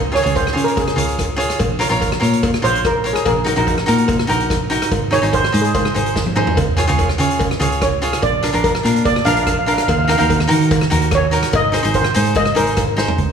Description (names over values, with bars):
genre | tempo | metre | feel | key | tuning
calypso | 145 BPM | 4/4 | straight | Db major | A4 = 441 Hz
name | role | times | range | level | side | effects
fingered electric bass | bass | 0.0-13.3 s | Ab1 to Eb3 | -20 LUFS | right 1 dB | none
cavaquinho | accompaniment | 0.1-13.2 s | D4 to Db5 | -20 LUFS | equal | none
steel pan | melody | 0.2-13.2 s | Ab4 to F5 | -19 LUFS | right 1 dB | digital delay
street-band drum kit | drums | 0.2-13.3 s | hi-hat, kick drum, rim click, snare drum, toms | -21 LUFS | equal | none
cowbell | percussion | 0.4-12.9 s | none | -25 LUFS | left 2 dB | none
room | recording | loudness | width
light reverb | small room ambience | -14 LUFS | side -7 dB against mid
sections
0.0-13.2 A section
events
steel pan solo 0.0-13.2; drum fill 6.2-6.6, 13.0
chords
0.0 Db; 1.6 Bbm; 3.3 Ebm/Bb; 4.9 Ab; 6.6 Db; 8.2 Bb; 9.9 Ebm; 11.5 Abadd9